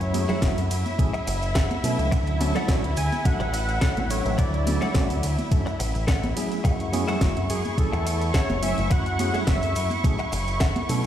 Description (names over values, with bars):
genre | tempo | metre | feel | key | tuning
nu-disco, nu disco | 106 BPM | 4/4 | swing 53% on 16ths | F# minor | A4 = 436 Hz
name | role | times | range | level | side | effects
wide unison lead | melody | 0.0-10.0 s | G#4 to G#5 | -31 LUFS | left 1 dB | analog delay
tine electric piano | accompaniment | 0.0-11.1 s | F#3 to G#5 | -30 LUFS | right 1 dB | overdrive, medium stereo tremolo, slapback echo
muted symphonic violin section | sustained chords | 0.0-11.1 s | E4 to C#6 | -32 LUFS | equal | sidechain pumping
direct-recorded clean electric guitar | riff | 0.0-11.1 s | G#4 to F#5 | -34 LUFS | left 3 dB | ensemble chorus, slapback echo
picked electric bass with an envelope filter | bass | 0.0-11.0 s | F#1 to B2 | -26 LUFS | equal | sidechain pumping
house drum kit | drums | 0.0-11.0 s | hi-hat, ride cymbal, snare drum | -33 LUFS | right 1 dB | overdrive
cabasa and congas | percussion | 0.0-11.1 s | none | -33 LUFS | right 2 dB | none
electronic kick drum | drums | 0.4-10.7 s | none | -23 LUFS | equal | none
room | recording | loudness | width
light reverb | played on a big sound system in a bare room, stone room reverb | -21 LUFS | side -10 dB against mid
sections
0.0-11.1 A section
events
none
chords
0.0 F#m9; 2.1 Dmaj7; 6.6 F#m9